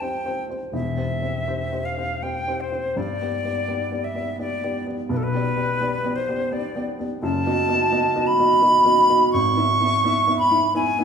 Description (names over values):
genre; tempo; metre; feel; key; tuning
classical, romantic duo for flute and grand piano; 84 BPM; 3/4; rubato; E major from 7.2 s; A4 = 440 Hz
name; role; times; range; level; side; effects
hollow concert flute; melody; 0.0-11.0 s; A4 to C#6; -21 LUFS; equal; none
dark baby grand piano; accompaniment; 0.0-11.0 s; E1 to E5; -24 LUFS; right 1 dB; none
room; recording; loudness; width
wet recital hall reverb, RT60 1.8 s; studio ambience; -19 LUFS; side -6 dB against mid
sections
0.0-11.0 A section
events
none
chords
0.0 C5; 0.7 C/E; 3.0 G; 5.1 G/B; 7.2 B7/F#; 9.3 E/G#